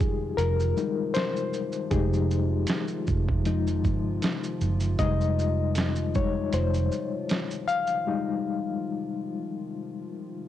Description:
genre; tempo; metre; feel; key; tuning
lo-fi hip hop; 78 BPM; 4/4; swing 55% on 16ths; F minor; A4 = 441 Hz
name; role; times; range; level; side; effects
barky reed electric piano; accompaniment; 0.0-10.5 s; F3 to F5; -28 LUFS; left 6 dB; overdrive, fast tremolo, cassette tape
hollow soft pad; sustained chords; 0.0-10.5 s; C3 to F4; -37 LUFS; right 2 dB; chorus, cassette tape
vintage muted fingered electric bass; bass; 0.0-6.9 s; F1 to G1; -26 LUFS; right 2 dB; transformer saturation
lo-fi sampler-style drum kit; drums; 0.0-8.0 s; hi-hat, kick drum, shaker, snare drum; -29 LUFS; right 2 dB; cassette tape
room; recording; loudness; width
light reverb; home recording on cassette; -24 LUFS; side -12 dB against mid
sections
0.0-10.5 A section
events
reed electric piano solo 0.0-10.5; break 8.1-10.5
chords
0.0 Fm7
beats
0.38 1.14 | 1.91 2.68 3.45 4.22 | 4.99 5.76 6.53 7.30 | 8.07 8.84 9.61 10.38

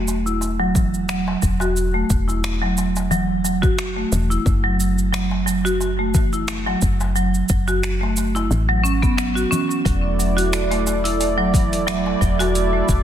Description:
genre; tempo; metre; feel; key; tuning
organic downtempo; 89 BPM; 4/4; swing 55% on 16ths; F# minor; A4 = 441 Hz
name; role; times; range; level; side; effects
marimba with hard mallets; arpeggios; 0.0-12.9 s; F#3 to F#4; -21 LUFS; right 2 dB; low-pass filter, digital delay, shimmer reverb
woody FM bass; bass; 0.0-13.0 s; E1 to A1; -23 LUFS; equal; sidechain pumping
afro-pop drum kit; drums; 0.1-13.0 s; finger snaps, hi-hat, shaker; -28 LUFS; right 2 dB; soft clipping on snare
darbuka; percussion; 0.1-12.5 s; none; -30 LUFS; left 3 dB; none
electronic kick drum; drums; 0.8-13.0 s; none; -20 LUFS; equal; none
warm analog pad; sustained chords; 9.9-13.0 s; A3 to D5; -22 LUFS; right 2 dB; chorus, tremolo, sidechain pumping, shimmer reverb
room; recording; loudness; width
light reverb, digital ambience; dense, heavily limited modern master; -17 LUFS; side -10 dB against mid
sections
0.0-13.0 A section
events
filter sweep on marimba 0.0-13.0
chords
0.0 N.C.; 4.5 F#m; 9.9 E7sus4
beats
0.42 1.09 | 1.77 2.44 3.12 3.79 | 4.46 5.14 5.81 6.49 | 7.16 7.83 8.51 9.18 | 9.86 10.53 11.21 11.88 | 12.55

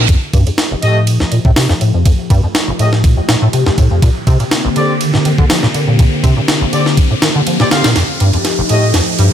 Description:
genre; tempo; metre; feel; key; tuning
breakbeat, breaks; 122 BPM; 4/4; swing 54% on 16ths; F mixolydian; A4 = 440 Hz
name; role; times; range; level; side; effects
phased analog pad; sustained chords; 0.0-9.3 s; D3 to G4; -20 LUFS; left 1 dB; phaser, chorus, sidechain pumping
deep acid bass; riff; 0.0-9.3 s; F1 to F3; -14 LUFS; equal; ensemble chorus, digital delay
reverse cymbal and riser; sound effects; 0.0-9.3 s; none; -22 LUFS; equal; none
breakbeat sampler-style drum kit; drums; 0.1-9.3 s; hi-hat, kick drum, ride cymbal, snare drum; -14 LUFS; equal; low-pass filter on cymbals, small room ambience, low-pass filter on snare, low-pass filter on hats, low-pass filter on kick
warm brass ensemble; stabs; 0.8-8.9 s; A3 to F5; -19 LUFS; equal; digital delay
room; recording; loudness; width
light reverb, digital ambience; none; -10 LUFS; side -10 dB against mid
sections
0.1-9.3 A section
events
build-up 0.1-9.3; riser 0.1-9.3; filter sweep on acid bass 0.1-9.3; drum fill 8.0-9.3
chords
0.1 F9; 4.0 Bb69; 8.0 F9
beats
| 0.09 0.58 1.07 1.56 | 2.06 2.55 3.04 3.53 | 4.02 4.51 5.01 5.50 | 5.99 6.48 6.97 7.47 | 7.96 8.45 8.94

